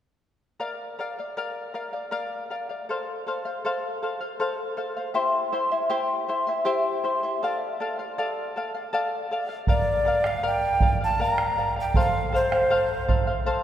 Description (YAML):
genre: andean folk, Andean ensemble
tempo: 79 BPM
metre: 3/4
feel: straight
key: unclear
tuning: A4 = 442 Hz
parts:
  - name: charango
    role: accompaniment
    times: 0.6-13.6 s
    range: E4 to C6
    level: -26 LUFS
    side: left 1 dB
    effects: none
  - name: breathy large quena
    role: melody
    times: 9.7-13.4 s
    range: C5 to Bb5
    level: -24 LUFS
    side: equal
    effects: none
  - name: bombo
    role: percussion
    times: 9.7-13.3 s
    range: none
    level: -25 LUFS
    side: right 2 dB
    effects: none
room: wet cathedral reverb, RT60 4.5 s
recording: recorded in a church or concert hall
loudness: -23 LUFS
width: side -11 dB against mid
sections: 0.6-9.7 A section; 9.7-13.6 B section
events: none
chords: 0.6 Bb; 2.9 F; 5.1 C; 7.4 Dm; 9.7 Bb; 12.0 F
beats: | 0.60 1.36 2.12 | 2.87 3.63 4.38 | 5.14 5.90 6.66 | 7.42 8.17 8.93 | 9.69 10.45 11.21 | 11.96 12.72 13.48